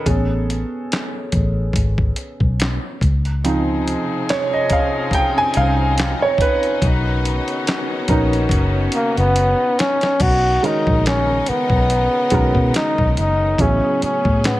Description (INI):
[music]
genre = R&B, neo-soul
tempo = 71 BPM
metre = 4/4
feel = swing 55% on 16ths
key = unclear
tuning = A4 = 441 Hz
[part]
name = warm concert grand piano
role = accompaniment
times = 0.0-14.6 s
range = C#3 to G#5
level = -22 LUFS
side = right 2 dB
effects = none
[part]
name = vintage muted fingered electric bass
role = bass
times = 0.1-14.6 s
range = F#1 to B2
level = -19 LUFS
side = equal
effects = none
[part]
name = dusty soul sampler-style drum kit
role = drums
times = 0.1-14.6 s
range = crash cymbal, handclaps, hi-hat, kick drum, snare drum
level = -21 LUFS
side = equal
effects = none
[part]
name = clear studio string section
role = sustained chords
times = 3.4-14.6 s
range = A2 to A#4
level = -27 LUFS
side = left 2 dB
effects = none
[part]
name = warm horn section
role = stabs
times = 3.4-9.7 s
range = D#3 to G#4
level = -27 LUFS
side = left 2 dB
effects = none
[part]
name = breathy flugelhorn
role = melody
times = 9.0-14.6 s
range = A#3 to F#4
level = -18 LUFS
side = left 1 dB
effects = none
[sound]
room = light reverb, studio reverb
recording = none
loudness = -15 LUFS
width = side -16 dB against mid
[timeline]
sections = 0.0-10.2 A section; 10.2-14.6 B section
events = grand piano solo 0.0-10.2; drum fill 8.5-10.2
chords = 0.1 Amaj9; 3.0 C#maj9; 6.8 Bmaj9; 13.6 Amaj9